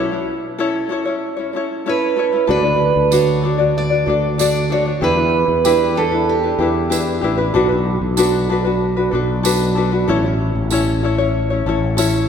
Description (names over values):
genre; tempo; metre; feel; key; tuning
acoustic pop; 95 BPM; 4/4; straight; D major; A4 = 440 Hz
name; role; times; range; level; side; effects
tenor ukulele; accompaniment; 0.0-12.3 s; C#4 to D5; -18 LUFS; left 2 dB; none
picked steel-string acoustic guitar; melody; 1.9-7.2 s; G4 to D5; -18 LUFS; right 6 dB; none
sustaining fretless electric bass; bass; 2.5-12.3 s; A1 to E2; -20 LUFS; equal; none
tambourine; percussion; 3.1-12.1 s; none; -27 LUFS; right 9 dB; none
room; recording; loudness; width
wet church reverb, RT60 3.0 s; recorded in a church or concert hall; -15 LUFS; side -7 dB against mid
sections
0.0-2.5 A section; 2.5-12.3 A section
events
break 0.0-2.5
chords
0.0 A; 2.5 D; 5.0 Em7; 7.5 Bm7; 10.1 A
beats
0.59 1.23 1.86 | 2.49 3.12 3.76 4.39 | 5.02 5.65 6.28 6.92 | 7.55 8.18 8.81 9.45 | 10.08 10.71 11.34 11.97